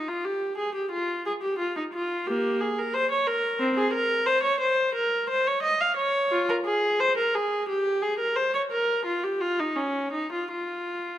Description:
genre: classical, baroque-style suite movement for unaccompanied viola.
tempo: 88 BPM.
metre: 4/4.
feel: rubato.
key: F minor.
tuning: A4 = 440 Hz.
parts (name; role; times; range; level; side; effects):
warm viola; solo; 0.0-11.2 s; Bb3 to F5; -24 LUFS; equal; none.
room: moderate recital hall reverb, RT60 1.4 s.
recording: close, detailed microphones.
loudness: -23 LUFS.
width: side -12 dB against mid.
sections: 0.0-11.2 A section.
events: none.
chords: none.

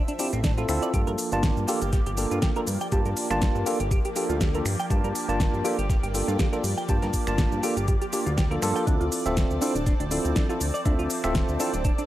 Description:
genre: nu-disco, nu disco.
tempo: 121 BPM.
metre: 4/4.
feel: swing 55% on 16ths.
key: unclear.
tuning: A4 = 441 Hz.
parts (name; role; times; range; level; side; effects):
lush unison pad; sustained chords; 0.0-12.1 s; F3 to E5; -34 LUFS; equal; chorus, phaser, sidechain pumping.
fat analog bass; bass; 0.0-11.9 s; D1 to G2; -28 LUFS; equal; none.
clean electric guitar; riff; 0.1-12.0 s; C4 to G5; -32 LUFS; right 2 dB; analog chorus, analog delay.
pop drum kit; drums; 0.1-12.1 s; cabasa, finger snaps, hi-hat, snare drum; -31 LUFS; equal; small room ambience.
bright tine electric piano; accompaniment; 0.2-11.7 s; Bb3 to A5; -28 LUFS; equal; auto-pan, sidechain pumping, analog delay.
electronic kick drum; drums; 0.4-12.0 s; none; -25 LUFS; equal; small room ambience.
room: little or no reverb.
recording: dry, gritty hardware recording.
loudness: -22 LUFS.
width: side -14 dB against mid.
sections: 0.0-12.1 A section.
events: none.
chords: 0.0 Dm7; 0.9 Gm7; 8.9 Dm7.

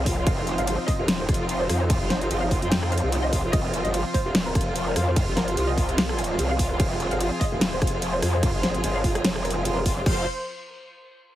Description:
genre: heavy wobble dubstep.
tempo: 147 BPM.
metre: 4/4.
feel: swing 55% on 16ths, half-time.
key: F minor.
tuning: A4 = 440 Hz.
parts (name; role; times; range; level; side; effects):
dark symphonic violin section; melody; 0.0-10.2 s; F4 to Ab5; -29 LUFS; right 1 dB; tape echo.
supersaw chords; sustained chords; 0.0-10.3 s; F3 to F5; -32 LUFS; equal; sidechain pumping, low-pass filter.
growl bass; bass; 0.0-10.3 s; Eb1 to F2; -26 LUFS; equal; chorus, overdrive.
dubstep drum kit; drums; 0.1-10.2 s; crash cymbal, hi-hat, rim click, snare drum; -28 LUFS; equal; none.
electronic kick drum; drums; 0.1-10.2 s; none; -25 LUFS; equal; none.
room: light reverb.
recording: heavily compressed radio sound.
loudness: -21 LUFS.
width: side -13 dB against mid.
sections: 0.0-10.1 A section; 10.1-11.4 B section.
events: drop 0.0-10.1.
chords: 0.0 F5.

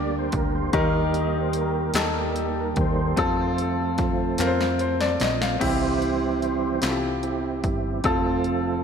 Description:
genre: slow gospel.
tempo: 49 BPM (dotted quarters).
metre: 6/8.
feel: straight.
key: C major from 5.6 s.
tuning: A4 = 442 Hz.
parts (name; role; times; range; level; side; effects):
clear concert grand piano; accompaniment; 0.0-8.8 s; C3 to F5; -26 LUFS; left 3 dB; slapback echo.
mellow French horn section; sustained chords; 0.0-5.6 s; F3 to G4; -35 LUFS; left 2 dB; none.
mellow tonewheel organ; sustained chords; 0.0-8.8 s; D3 to F5; -26 LUFS; right 4 dB; fast rotary speaker, overdrive, chorus vibrato.
hollow-body short-scale fingered electric bass; bass; 0.0-8.8 s; F1 to F2; -30 LUFS; equal; none.
punchy analog drum machine; drums; 0.3-8.6 s; crash cymbal, hi-hat, kick drum, snare drum; -29 LUFS; equal; none.
group handclap; percussion; 2.0-7.2 s; none; -36 LUFS; left 4 dB; none.
room: wet concert hall reverb, RT60 2.5 s.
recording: big arena sound.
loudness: -21 LUFS.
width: side -7 dB against mid.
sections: 0.0-5.6 A section; 5.6-8.8 B section.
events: tonewheel organ solo 0.0-5.6, 5.6-8.8; drum fill 4.4-5.6.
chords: 0.0 Gm/D; 0.7 Eb; 3.2 F; 5.6 C; 8.0 F.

